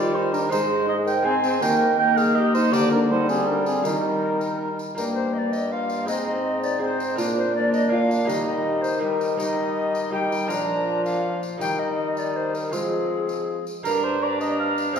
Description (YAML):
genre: classical, renaissance-style consort dance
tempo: 162 BPM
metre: 3/4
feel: straight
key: unclear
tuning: A4 = 440 Hz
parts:
  - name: tenor recorder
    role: melody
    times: 0.0-15.0 s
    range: C4 to Bb5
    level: -27 LUFS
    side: left 4 dB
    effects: none
  - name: mellow cor anglais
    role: second line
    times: 0.0-15.0 s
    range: C4 to Ab5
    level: -26 LUFS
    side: right 4 dB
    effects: none
  - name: dark viola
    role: accompaniment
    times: 0.0-15.0 s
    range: F3 to D4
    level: -27 LUFS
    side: left 2 dB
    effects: none
  - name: lute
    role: accompaniment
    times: 0.0-15.0 s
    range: G2 to Bb4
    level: -31 LUFS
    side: right 1 dB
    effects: none
  - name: warm bassoon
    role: bass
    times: 0.0-15.0 s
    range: G2 to F3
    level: -27 LUFS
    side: right 1 dB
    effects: none
  - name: tambourine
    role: percussion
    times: 0.3-15.0 s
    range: none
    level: -41 LUFS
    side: left 3 dB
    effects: none
room: wet recital hall reverb, RT60 1.8 s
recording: recorded in a church or concert hall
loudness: -20 LUFS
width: side -7 dB against mid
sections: 0.0-5.0 A section; 5.0-13.9 B section; 13.9-15.0 B section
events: none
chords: 0.0 Eb; 0.5 Ab; 1.6 Eb; 2.7 Gm/D; 3.8 Eb; 5.0 Gm; 6.1 Ab; 7.2 Bb; 8.3 Eb; 10.5 Bb; 11.6 Eb; 12.7 Fm; 13.9 Gm